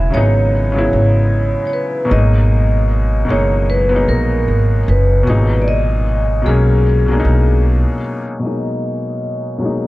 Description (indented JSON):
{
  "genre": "lo-fi hip hop",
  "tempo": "76 BPM",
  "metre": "4/4",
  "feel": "swing 62% on 16ths",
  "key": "G# minor",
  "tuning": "A4 = 442 Hz",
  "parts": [
    { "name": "vibraphone with medium mallets", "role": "melody", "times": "0.0-9.9 s", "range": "G#4 to E5", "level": "-20 LUFS", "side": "equal", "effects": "low-pass filter" },
    { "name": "felt-muted upright piano", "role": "accompaniment", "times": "0.0-9.9 s", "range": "A#2 to E4", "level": "-19 LUFS", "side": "left 2 dB", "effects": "cassette tape, low-pass filter" },
    { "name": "upright bass", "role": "bass", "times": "0.0-7.8 s", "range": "F#1 to B1", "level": "-14 LUFS", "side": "equal", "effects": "none" }
  ],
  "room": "small room ambience",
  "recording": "cassette tape, low-pass filter",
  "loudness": "-12 LUFS",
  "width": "side -18 dB against mid",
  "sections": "0.0-8.4 A section; 8.4-9.9 B section",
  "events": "none",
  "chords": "0.0 E6; 2.1 G#m9",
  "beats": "0.52 1.31 | 2.10 2.89 3.68 4.47 | 5.26 6.05 6.84 7.63 | 8.42 9.21"
}